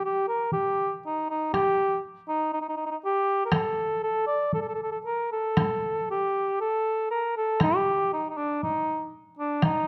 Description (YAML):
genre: japanese traditional, Japanese chamber music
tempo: 60 BPM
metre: 2/4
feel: rubato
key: unclear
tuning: A4 = 439 Hz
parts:
  - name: dark cor anglais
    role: melody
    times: 0.0-9.9 s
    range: D4 to D5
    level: -28 LUFS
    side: equal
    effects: none
  - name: taiko ensemble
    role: percussion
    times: 0.5-9.8 s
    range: none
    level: -31 LUFS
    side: equal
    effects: none
room: moderate recital hall reverb, RT60 1.3 s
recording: dark, warm production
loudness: -27 LUFS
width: mono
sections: 0.0-9.9 A section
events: none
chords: none